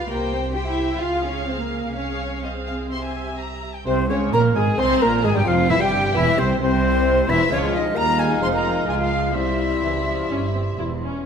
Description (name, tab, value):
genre	quick classical-period movement for symphony orchestra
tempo	123-134 BPM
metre	4/4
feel	rubato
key	F minor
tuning	A4 = 440 Hz
part	warm chamber violin section	melody	0.0-11.0 s	C4 to C6	-29 LUFS	left 6 dB	none
part	warm chamber violin section	second line	0.0-10.8 s	Bb4 to C6	-30 LUFS	left 1 dB	none
part	warm studio viola section	accompaniment	0.0-11.3 s	C3 to F5	-28 LUFS	right 1 dB	none
part	rich chamber cello section	bass	0.0-11.3 s	C2 to G4	-27 LUFS	right 2 dB	none
part	rich chamber double bass section	bass	0.0-11.3 s	E1 to Eb2	-26 LUFS	right 3 dB	none
part	bright silver concert flute	second line	3.9-10.8 s	C5-20c to C6	-24 LUFS	left 3 dB	none
part	mellow clarinet	second line	3.9-11.0 s	C4 to C5	-30 LUFS	equal	none
part	mellow cor anglais	second line	3.9-11.0 s	Bb4 to Ab5	-28 LUFS	right 3 dB	none
part	dark bassoon	accompaniment	3.9-11.0 s	C3 to C4	-28 LUFS	right 1 dB	none
part	mellow French horn section	sustained chords	3.9-10.8 s	C4 to C5	-28 LUFS	left 5 dB	none
part	timpani	percussion	5.7-6.3 s	C3	-31 LUFS	equal	none
room	moderate scoring stage reverb, RT60 1.9 s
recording	none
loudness	-18 LUFS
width	side -7 dB against mid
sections	0.0-3.9 A section; 3.9-11.3 B section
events	none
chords	0.1 C; 1.0 Db; 1.9 Fm/C; 2.9 C; 3.9 Fm; 5.7 C/E; 7.5 Db; 9.3 C